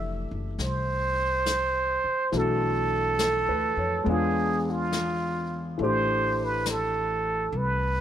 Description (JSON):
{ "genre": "jazz ballad", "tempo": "69 BPM", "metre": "4/4", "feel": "swing 68% on 8ths", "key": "unclear", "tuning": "A4 = 440 Hz", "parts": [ { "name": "trumpet with plunger mute", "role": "melody", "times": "0.0-8.0 s", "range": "F4 to E5", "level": "-26 LUFS", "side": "right 3 dB", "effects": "none" }, { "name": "warm grand piano", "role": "accompaniment", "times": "0.0-8.0 s", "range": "E3 to Db5", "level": "-30 LUFS", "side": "left 3 dB", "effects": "none" }, { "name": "upright bass", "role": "bass", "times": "0.0-8.0 s", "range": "F1 to F2", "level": "-31 LUFS", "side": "left 1 dB", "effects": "none" }, { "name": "jazz brush drum kit", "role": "drums", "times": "0.6-8.0 s", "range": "brushed snare drum, hi-hat, snare drum", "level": "-36 LUFS", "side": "left 4 dB", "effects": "none" } ], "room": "light reverb", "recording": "none", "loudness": "-24 LUFS", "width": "side -10 dB against mid", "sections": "0.0-8.0 A section", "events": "none", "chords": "0.0 Fmaj9 (rootless); 2.3 Bm7; 4.1 E7b9; 5.8 Am7", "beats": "0.59 1.46 | 2.32 3.19 4.06 4.93 | 5.80 6.66 7.53" }